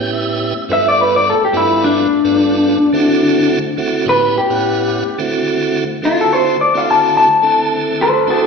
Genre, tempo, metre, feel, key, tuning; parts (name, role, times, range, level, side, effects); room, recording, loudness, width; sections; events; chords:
blues; 107 BPM; 4/4; swing 55% on 16ths; D mixolydian; A4 = 438 Hz
tonewheel organ; accompaniment; 0.0-8.5 s; G2 to G5; -17 LUFS; right 3 dB; slow rotary speaker, slapback echo
electric guitar through a small old amp; melody; 0.7-8.5 s; D4 to A5; -12 LUFS; left 2 dB; slapback echo
moderate plate reverb, RT60 2.4 s; live gig heard through the venue's PA, recital hall reverb; -12 LUFS; side -5 dB against mid
0.0-5.2 A section; 5.2-8.5 B section
tonewheel organ fill 0.0-0.7; clean electric guitar solo 0.0-5.2
0.0 A9; 0.7 G9; 2.9 D9; 4.1 A9; 5.2 D9